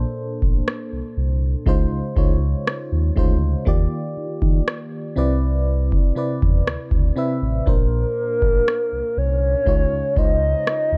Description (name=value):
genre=contemporary R&B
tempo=60 BPM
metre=4/4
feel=straight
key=Bb major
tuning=A4 = 441 Hz
part: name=FM electric piano with tremolo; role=accompaniment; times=0.0-11.0 s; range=Bb2 to E5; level=-28 LUFS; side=equal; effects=none
part: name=sub bass with octave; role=bass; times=0.0-11.0 s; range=A1 to Eb3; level=-24 LUFS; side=equal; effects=none
part: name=booming analog drum machine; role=drums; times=0.4-10.9 s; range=kick drum, rim click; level=-21 LUFS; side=equal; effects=none
part: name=hollow clarinet-like synth lead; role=melody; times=7.7-11.0 s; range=Bb4 to Eb5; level=-23 LUFS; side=equal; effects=chorus
room=little or no reverb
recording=dry, gritty hardware recording, cassette tape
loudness=-20 LUFS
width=mono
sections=0.0-11.0 A section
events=none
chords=0.0 Bbmaj9; 1.7 Dbmaj9; 3.7 Ebmaj9; 5.2 Cmaj9; 7.7 Bbmaj9; 9.7 Dbmaj9